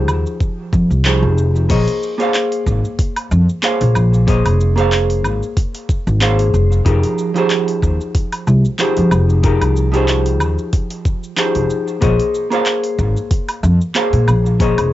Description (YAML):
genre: sunset chillout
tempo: 93 BPM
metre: 4/4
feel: swing 55% on 16ths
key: unclear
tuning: A4 = 440 Hz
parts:
  - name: vintage hollow-body jazz guitar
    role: accompaniment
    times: 0.0-14.9 s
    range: F3 to F5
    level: -18 LUFS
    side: moving between left 5 dB and right 3 dB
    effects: auto-pan, cassette tape, analog delay
  - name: upright bass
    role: bass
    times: 0.0-14.9 s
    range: F1 to Bb2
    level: -14 LUFS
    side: equal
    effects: none
  - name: smooth R&B drum kit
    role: drums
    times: 0.1-14.9 s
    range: cabasa, crash cymbal, handclaps, hi-hat, woodblock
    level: -22 LUFS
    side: equal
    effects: cassette tape
  - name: electronic kick drum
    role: drums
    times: 0.4-14.7 s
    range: none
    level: -17 LUFS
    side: equal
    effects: cassette tape
room: light reverb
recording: home recording on cassette, nothing above 7.8 kHz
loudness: -13 LUFS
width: side -14 dB against mid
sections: 0.0-1.7 A section; 1.7-14.9 B section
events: band accent 1.1-1.4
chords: 0.0 Fm9; 1.7 Bbm11; 6.9 Fm11; 12.0 Bbm11